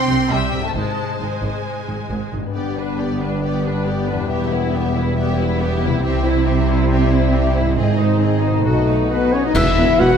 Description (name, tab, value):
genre	cinematic, heroic adventure film score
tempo	136 BPM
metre	4/4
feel	straight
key	G major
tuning	A4 = 440 Hz
part	warm symphonic violin section	melody	0.0-10.2 s	B4 to C6	-29 LUFS	left 5 dB	none
part	warm symphonic violin section	second line	0.0-9.6 s	E4 to G5	-28 LUFS	left 2 dB	none
part	rich symphonic viola section	accompaniment	0.0-10.1 s	G3 to F#4	-26 LUFS	right 2 dB	none
part	concert harp	arpeggios	0.0-10.2 s	E2 to E5	-27 LUFS	left 7 dB	none
part	dark symphonic cello section	bass	0.1-10.1 s	E2 to C3	-24 LUFS	right 3 dB	none
part	rich studio double bass section	bass	0.1-10.1 s	E1 to C2	-22 LUFS	right 4 dB	none
part	clear French horn section	sustained chords	2.6-10.2 s	G3 to F#4	-21 LUFS	left 4 dB	none
part	mellow silver concert flute	second line	9.1-10.2 s	B4 to F#5	-26 LUFS	left 2 dB	none
part	bright trumpet section	stabs	9.1-10.2 s	B4 to F#5	-24 LUFS	right 3 dB	none
part	clear trombone section	sustained chords	9.5-10.2 s	E3 to B3	-25 LUFS	right 7 dB	none
part	clash cymbals and concert bass drum	percussion	9.5-10.2 s	none	-20 LUFS	equal	none
part	clear clarinet	second line	9.6-9.7 s	B4	-28 LUFS	left 2 dB	none
part	warm oboe	second line	9.6-9.7 s	E5	-25 LUFS	equal	none
part	warm tuba	bass	9.6-10.1 s	E1	-24 LUFS	right 4 dB	none
room	moderate scoring stage reverb, RT60 1.6 s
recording	none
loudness	-16 LUFS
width	side -7 dB against mid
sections	0.0-2.6 A section; 2.6-9.6 B section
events	band accent 9.6-10.0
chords	0.0 C; 0.8 Ab; 2.6 G; 4.3 Em; 6.0 C; 7.8 Ab; 8.7 B7; 9.6 E5